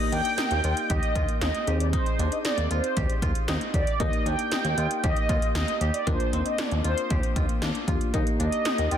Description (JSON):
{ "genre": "synth-pop", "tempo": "116 BPM", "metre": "4/4", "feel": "straight", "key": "Eb major", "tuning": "A4 = 439 Hz", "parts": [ { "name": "mellow synth brass", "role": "melody", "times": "0.0-9.0 s", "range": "C5 to G5", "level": "-29 LUFS", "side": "right 1 dB", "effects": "chorus, ping-pong delay, shimmer reverb" }, { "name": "mellow FM electric piano", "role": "accompaniment", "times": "0.0-9.0 s", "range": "Bb3 to C5", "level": "-33 LUFS", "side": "left 3 dB", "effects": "chorus, shimmer reverb" }, { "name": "koto", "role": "arpeggios", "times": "0.0-9.0 s", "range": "C4 to G4", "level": "-34 LUFS", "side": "left 1 dB", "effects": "ping-pong delay, shimmer reverb" }, { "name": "chorused synth bass", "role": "bass", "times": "0.1-9.0 s", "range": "Eb2", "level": "-27 LUFS", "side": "equal", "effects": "none" }, { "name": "80s electronic pad drums", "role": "drums", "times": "0.1-9.0 s", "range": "hi-hat, kick drum, snare drum", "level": "-27 LUFS", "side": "equal", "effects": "none" } ], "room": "light reverb, digital ambience", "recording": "dense, heavily limited modern master", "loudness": "-23 LUFS", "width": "side -9 dB against mid", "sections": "0.0-9.0 A section", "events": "none", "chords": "0.0 Eb; 1.7 Ab/Eb; 4.0 Eb; 6.1 Bb/Eb" }